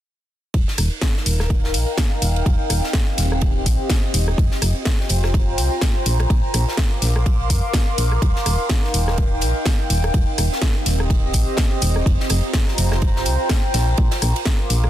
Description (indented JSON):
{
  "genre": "piano house",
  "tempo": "125 BPM",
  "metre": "4/4",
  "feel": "swing 58% on 16ths",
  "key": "unclear",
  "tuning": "A4 = 441 Hz",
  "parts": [
    { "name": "solid FM bass", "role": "bass", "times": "0.5-14.9 s", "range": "Eb1 to F2", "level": "-20 LUFS", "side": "equal", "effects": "sidechain pumping" },
    { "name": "electronic kick drum", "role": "drums", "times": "0.5-14.6 s", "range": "none", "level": "-19 LUFS", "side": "equal", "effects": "studio reverb" },
    { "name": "natural country drum kit", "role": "drums", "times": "0.5-14.8 s", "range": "ride cymbal, snare drum", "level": "-31 LUFS", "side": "right 3 dB", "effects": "sidechain pumping on cymbals, high-pass filter on cymbals, studio reverb, soft clipping on snare, high-pass filter on snare, high-pass filter on room" },
    { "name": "warbly tape-like pad", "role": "texture", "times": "0.9-14.9 s", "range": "C4 to D6", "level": "-25 LUFS", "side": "equal", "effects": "chorus, built-in reverb, sidechain pumping" },
    { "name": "house drum kit", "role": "drums", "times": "0.8-14.9 s", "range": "hi-hat, rim click, snare drum", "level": "-24 LUFS", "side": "left 1 dB", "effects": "studio reverb" }
  ],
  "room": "little or no reverb",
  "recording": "dense, heavily limited modern master",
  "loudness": "-17 LUFS",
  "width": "side -12 dB against mid",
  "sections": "0.5-14.9 A section",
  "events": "none",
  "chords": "0.5 Ebadd9; 4.4 F9sus4; 6.1 Bbadd9; 8.2 Ebmaj9; 12.1 F9sus4; 13.7 Bbadd9",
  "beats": "| 0.54 1.02 1.50 1.98 | 2.46 2.94 3.42 3.90 | 4.38 4.86 5.34 5.82 | 6.30 6.78 7.26 7.74 | 8.22 8.70 9.18 9.66 | 10.14 10.62 11.10 11.58 | 12.06 12.54 13.02 13.50 | 13.98 14.46"
}